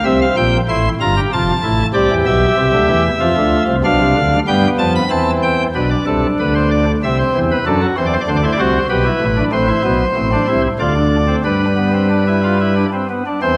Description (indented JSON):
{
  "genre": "classical, baroque-style 3-part fugue for pipe organ",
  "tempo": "95 BPM",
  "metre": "3/4",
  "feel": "straight",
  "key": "unclear",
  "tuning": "A4 = 440 Hz",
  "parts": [
    { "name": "pipe organ, cornet", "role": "solo", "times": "0.0-13.6 s", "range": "F1 to C6", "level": "-15 LUFS", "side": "equal", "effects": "none" }
  ],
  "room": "wet concert hall reverb, RT60 2.0 s",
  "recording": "none",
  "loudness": "-15 LUFS",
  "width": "mono",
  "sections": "0.0-5.8 A section; 5.8-13.4 B section",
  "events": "none",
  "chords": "0.1 C7; 1.3 F; 1.9 C; 3.2 Dm; 3.8 G7/B; 5.1 C/E; 5.8 Bm7; 7.0 Cmaj7; 7.7 D7; 8.9 G/B; 9.5 Am; 10.8 Dm; 11.4 G",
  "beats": "| 0.06 0.69 1.32 | 1.94 2.57 3.21 | 3.84 4.48 5.11 | 5.75 6.39 7.03 | 7.66 8.28 8.90 | 9.53 10.16 10.79 | 11.44 12.10 12.75 | 13.40"
}